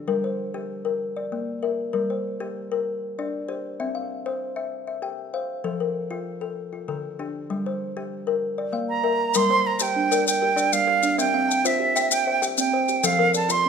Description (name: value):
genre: southern african traditional, mbira-style interlocking cycle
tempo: 130 BPM (dotted quarters)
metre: 12/8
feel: straight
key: G dorian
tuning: A4 = 440 Hz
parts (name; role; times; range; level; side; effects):
- kalimba; arpeggios; 0.0-13.7 s; D3 to G5; -26 LUFS; left 4 dB; none
- breathy bright silver concert flute; melody; 8.9-13.7 s; E5 to C6; -21 LUFS; right 5 dB; none
- maracas; percussion; 9.3-13.6 s; none; -27 LUFS; left 6 dB; none
- kalimba; arpeggios; 9.5-13.7 s; F3 to E6; -28 LUFS; right 5 dB; none
room: moderate recital hall reverb, RT60 1.3 s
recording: minimal, uncompressed stereo recording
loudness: -22 LUFS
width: side -6 dB against mid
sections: 0.0-9.3 A section; 9.3-13.7 B section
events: none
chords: 0.1 Gm; 1.0 Bb; 1.9 Gm; 3.8 C; 5.6 F; 6.6 Dm; 7.5 Gm; 8.4 Bb; 9.3 Gm; 11.2 C; 13.0 F